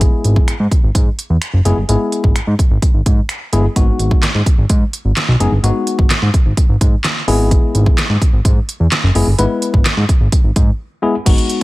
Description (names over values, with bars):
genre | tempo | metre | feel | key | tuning
dance-pop | 128 BPM | 4/4 | straight | unclear | A4 = 441 Hz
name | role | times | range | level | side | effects
tine electric piano | accompaniment | 0.0-11.6 s | G#3 to B4 | -18 LUFS | left 3 dB | sidechain pumping
fat analog bass | bass | 0.0-11.3 s | F#1 to G#2 | -15 LUFS | equal | sidechain pumping
pop drum kit | drums | 0.0-11.6 s | crash cymbal, finger snaps, handclaps, hi-hat, kick drum, snare drum | -13 LUFS | equal | none
room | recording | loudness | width
little or no reverb | none | -12 LUFS | side -19 dB against mid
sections
0.0-11.3 A section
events
break 10.8-11.3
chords
0.0 E; 3.8 G#m7; 7.3 E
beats
| 0.01 0.48 0.95 1.42 | 1.89 2.36 2.83 3.29 | 3.76 4.23 4.70 5.17 | 5.64 6.11 6.58 7.04 | 7.51 7.98 8.45 8.92 | 9.39 9.86 10.32 10.79 | 11.26